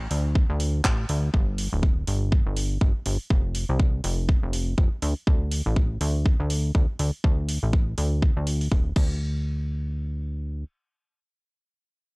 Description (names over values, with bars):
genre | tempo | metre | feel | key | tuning
piano house | 122 BPM | 4/4 | swing 58% on 16ths | D minor | A4 = 439 Hz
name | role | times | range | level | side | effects
plucky analog bass | bass | 0.0-10.6 s | D1 to D2 | -25 LUFS | equal | sidechain pumping
house drum kit | drums | 0.1-9.1 s | crash cymbal, handclaps, hi-hat | -32 LUFS | right 1 dB | none
electronic kick drum | drums | 0.4-9.1 s | none | -21 LUFS | equal | none
room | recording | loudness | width
little or no reverb | dry, gritty hardware recording, cassette tape | -22 LUFS | side -33 dB against mid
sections
0.0-9.2 A section; 9.2-12.2 B section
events
none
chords
none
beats
0.35 0.84 | 1.34 1.83 2.32 2.81 | 3.30 3.80 4.29 4.78 | 5.27 5.76 6.25 6.75 | 7.24 7.73 8.22 8.71 | 9.21 9.70 10.19